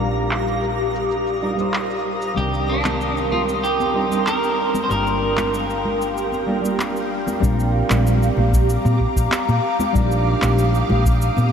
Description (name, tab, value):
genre	sunset chillout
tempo	95 BPM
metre	4/4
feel	straight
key	Bb major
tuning	A4 = 440 Hz
part	nylon-string guitar	accompaniment	0.0-11.5 s	Eb3 to A5	-26 LUFS	moving between left 4 dB and right 4 dB	auto-pan, ping-pong delay
part	ethereal airy pad	sustained chords	0.0-11.5 s	G4 to Eb6	-23 LUFS	equal	ensemble chorus, built-in reverb, phaser
part	woody fretless electric bass	bass	0.0-11.5 s	G1 to Bb2	-21 LUFS	equal	analog chorus
part	electronic shaker and handclaps	drums	0.0-11.5 s	none	-30 LUFS	equal	overdrive, low-pass filter on perc, low-pass filter on snare, low-pass filter on toms
part	twinkling granular texture	texture	0.0-7.4 s	Bb4 to Bb5	-34 LUFS	equal	built-in reverb
part	clean electric guitar	melody	2.4-7.1 s	D4 to C5	-25 LUFS	right 1 dB	diffuse ambient delay
part	congas	percussion	2.9-11.5 s	none	-29 LUFS	left 2 dB	none
part	electronic kick drum	drums	7.4-11.2 s	none	-20 LUFS	equal	overdrive
room	wet huge ambient reverb, RT60 8.0 s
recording	dreamy mix soaked in reverb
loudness	-17 LUFS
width	side -7 dB against mid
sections	0.0-7.4 A section; 7.4-11.5 B section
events	filter sweep on ambient pad 0.0-7.4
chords	0.0 Ebmaj9/Bb; 2.4 Cm7; 4.9 Gm9; 7.4 Bb6; 9.9 Ebmaj9/Bb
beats	0.48 1.11 1.74 | 2.37 3.00 3.63 4.26 | 4.90 5.53 6.16 6.79 | 7.42 8.05 8.69 9.32 | 9.95 10.58 11.21